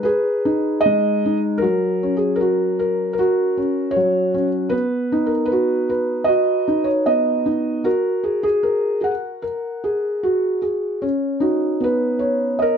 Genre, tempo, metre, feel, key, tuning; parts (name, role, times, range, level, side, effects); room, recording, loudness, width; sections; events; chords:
children's music, lullaby; 77 BPM; 4/4; straight; B major; A4 = 439 Hz
felt-muted upright piano; solo; 0.0-12.8 s; F#3 to F#5; -17 LUFS; equal
moderate studio reverb, RT60 0.6 s; dark, warm production; -17 LUFS; side -7 dB against mid
0.0-11.0 A section; 11.0-12.8 B section
0.0 G#m; 1.6 F#; 4.7 B; 7.8 F#add9; 11.0 Badd9